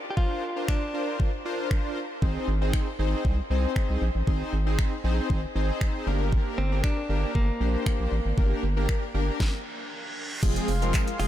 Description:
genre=dance-pop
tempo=117 BPM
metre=4/4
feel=straight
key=unclear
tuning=A4 = 440 Hz
part: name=direct-recorded clean electric guitar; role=melody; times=0.1-1.2, 6.6-11.3 s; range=Bb3 to G4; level=-35 LUFS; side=left 1 dB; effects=ping-pong delay
part: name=big bright polysynth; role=accompaniment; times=0.2-11.3 s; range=F3 to C5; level=-30 LUFS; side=left 1 dB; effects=chorus, sidechain pumping
part: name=smooth R&B drum kit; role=drums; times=0.2-11.3 s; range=crash cymbal, finger snaps, handclaps, hi-hat, kick drum, shaker, snare drum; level=-28 LUFS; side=equal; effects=none
part: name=round analog bass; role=bass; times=2.2-11.3 s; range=F1 to C2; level=-26 LUFS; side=equal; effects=sidechain pumping
part: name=reverse cymbal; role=sound effects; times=9.6-10.4 s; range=none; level=-38 LUFS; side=right 2 dB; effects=none
part: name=chorused pulse-width pad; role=sustained chords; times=10.4-11.3 s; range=Ab4 to C6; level=-34 LUFS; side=right 1 dB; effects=sidechain pumping
part: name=tambourine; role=percussion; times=10.4-11.3 s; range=none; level=-46 LUFS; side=right 11 dB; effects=none
room=light reverb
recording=none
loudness=-24 LUFS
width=side -12 dB against mid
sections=0.0-10.4 A section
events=stop 9.4-10.4; reverse cymbal 9.6-10.4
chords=0.0 Bbadd9; 2.2 Ab; 6.1 Gm; 10.4 Fm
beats=| 0.17 0.68 1.20 1.71 | 2.22 2.73 3.25 3.76 | 4.27 4.79 5.30 5.81 | 6.33 6.84 7.35 7.86 | 8.38 8.89 9.40 9.91 | 10.43 10.94

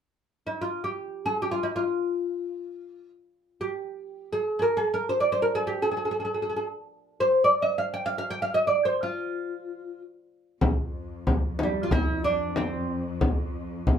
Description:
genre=Arabic maqam ensemble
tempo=free time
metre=none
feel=none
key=F maqam rast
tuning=A4 = 440 Hz
part: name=oud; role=melody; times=0.5-13.0 s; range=G3 to G5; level=-25 LUFS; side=equal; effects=none
part: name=clear studio cello section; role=drone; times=10.6-14.0 s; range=F2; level=-35 LUFS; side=left 2 dB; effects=none
part: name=frame drum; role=percussion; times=10.6-14.0 s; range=none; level=-24 LUFS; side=left 1 dB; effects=none
room=wet studio ambience, RT60 0.5 s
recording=band playing live in one room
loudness=-24 LUFS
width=side -8 dB against mid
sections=0.1-10.6 A section; 10.6-14.0 B section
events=none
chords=none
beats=free time

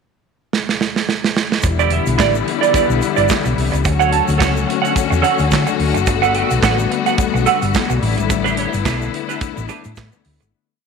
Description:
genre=disco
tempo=108 BPM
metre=4/4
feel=swing 56% on 16ths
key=E dorian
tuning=A4 = 440 Hz
part: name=modern studio drum kit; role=drums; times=0.5-10.5 s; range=handclaps, hi-hat, kick drum, snare drum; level=-20 LUFS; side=right 4 dB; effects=none
part: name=semi-hollow electric guitar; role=accompaniment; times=1.6-10.4 s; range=D4 to A5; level=-19 LUFS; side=right 12 dB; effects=lush chorus
part: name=rich symphonic string section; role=sustained chords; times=1.6-10.5 s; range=D3 to F#4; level=-19 LUFS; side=left 12 dB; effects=none
part: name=hollow-body short-scale fingered electric bass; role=bass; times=1.6-10.5 s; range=E1 to D3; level=-19 LUFS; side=equal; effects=none
part: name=tube shaker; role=percussion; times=1.6-10.5 s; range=none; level=-34 LUFS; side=left 16 dB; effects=none
room=light reverb, studio reverb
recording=1960s-style stereo with parts hard left and right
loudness=-14 LUFS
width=side -5 dB against mid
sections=0.0-1.6 pickup bar; 1.6-10.5 verse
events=drum fill 0.5-1.6; fade-out 8.3-10.5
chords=0.0 N.C.; 1.6 Em7; 3.9 Dmaj7; 6.1 Gmaj9; 8.0 A9sus4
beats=0.53 1.08 | 1.64 2.19 2.75 3.30 | 3.85 4.41 4.96 5.52 | 6.08 6.63 7.19 7.75 | 8.30 8.86 9.42 9.98

